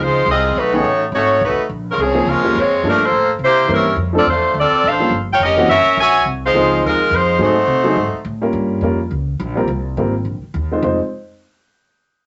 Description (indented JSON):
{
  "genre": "jazz, big band swing",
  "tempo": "210 BPM",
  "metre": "4/4",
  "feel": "swing 59% on 8ths",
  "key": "F minor",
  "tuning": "A4 = 440 Hz",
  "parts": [
    { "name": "clear saxophone section", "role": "melody", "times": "0.0-8.2 s", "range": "F3 to Ab5", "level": "-16 LUFS", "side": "equal", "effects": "none" },
    { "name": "warm upright piano", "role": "accompaniment", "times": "0.0-11.0 s", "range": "D#3 to C5", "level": "-21 LUFS", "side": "equal", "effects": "none" },
    { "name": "upright bass", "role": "bass", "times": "0.0-11.0 s", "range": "F1 to C3", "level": "-25 LUFS", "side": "equal", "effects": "none" }
  ],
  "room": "wet club reverb, RT60 0.6 s",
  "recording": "nothing above 7.9 kHz",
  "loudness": "-16 LUFS",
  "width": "mono",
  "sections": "0.0-8.5 A section; 8.5-10.8 B section; 10.8-12.0 C section",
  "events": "none",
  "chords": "0.0 Fm7; 0.6 B13; 1.7 Bbm9; 2.8 Gm9; 3.4 C7b9; 4.0 F6; 5.1 Gm7b5; 5.7 Gb7; 6.3 Fm7; 7.4 Ab7b9; 8.5 Gm7b5; 9.7 C7sus4; 10.8 Fm7"
}